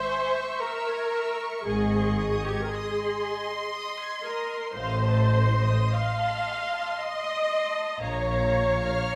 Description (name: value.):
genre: classical, slow romantic movement for string orchestra.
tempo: 58 BPM.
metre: 3/4.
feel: rubato.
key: Ab major.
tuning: A4 = 440 Hz.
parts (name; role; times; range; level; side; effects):
bright symphonic violin section; melody; 0.0-9.2 s; Bb5 to Db6; -39 LUFS; equal; none.
clear symphonic violin section; second line; 0.0-9.2 s; Eb5 to Ab6; -39 LUFS; equal; none.
clear symphonic viola section; accompaniment; 0.0-9.2 s; G4 to F5; -30 LUFS; equal; none.
rich symphonic cello section; bass; 1.7-8.9 s; Ab2 to Bb2; -35 LUFS; equal; none.
rich symphonic double bass section; bass; 1.7-8.9 s; Ab1 to Bb1; -29 LUFS; equal; none.
room: wet scoring stage reverb, RT60 1.5 s.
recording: none.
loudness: -27 LUFS.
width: mono.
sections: 0.0-9.2 A section.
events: none.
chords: 0.0 Dbm; 1.7 Ab; 4.7 F7/A; 8.0 Bbm.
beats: 0.60 | 1.65 2.68 3.70 | 4.75 5.92 6.98 | 8.02 9.08.